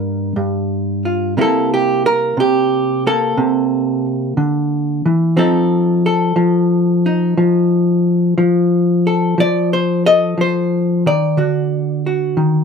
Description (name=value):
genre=solo jazz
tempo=60 BPM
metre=4/4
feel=swing 68% on 8ths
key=F mixolydian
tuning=A4 = 440 Hz
part: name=hollow-body jazz guitar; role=solo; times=0.0-12.6 s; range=G2 to Eb5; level=-13 LUFS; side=equal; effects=none
room=light reverb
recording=none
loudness=-13 LUFS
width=side -6 dB against mid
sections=0.0-12.6 A section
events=hollow-body jazz guitar solo 0.0-12.6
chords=0.0 Gm7; 1.4 C7; 5.4 F7; 11.4 D